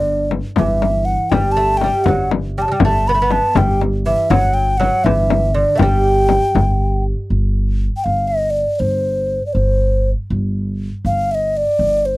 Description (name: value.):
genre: Persian modal ensemble.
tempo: 80 BPM (dotted quarters).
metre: 6/8.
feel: straight.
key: G dastgah mahur, G dastgah shur from 7.3 s.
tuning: A4 = 439 Hz.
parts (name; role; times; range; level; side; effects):
breathy mellow alto ocarina; melody; 0.0-12.2 s; C5 to B5; -17 LUFS; equal; none.
lute; second line; 0.0-7.0 s; D3 to B3; -22 LUFS; right 3 dB; none.
upright bass; bass; 0.0-12.2 s; G1; -18 LUFS; equal; none.
frame drum; percussion; 0.3-6.7 s; none; -18 LUFS; left 5 dB; none.
room: light reverb.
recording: dry, close 1970s-style studio recording.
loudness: -14 LUFS.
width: side -18 dB against mid.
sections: 0.0-7.3 A section; 7.3-12.2 B section.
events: none.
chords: none.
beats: 0.57 | 1.32 2.06 | 2.81 3.56 | 4.31 5.05 | 5.80 6.55 | 7.30 8.05 | 8.80 9.55 | 10.30 11.05 | 11.80.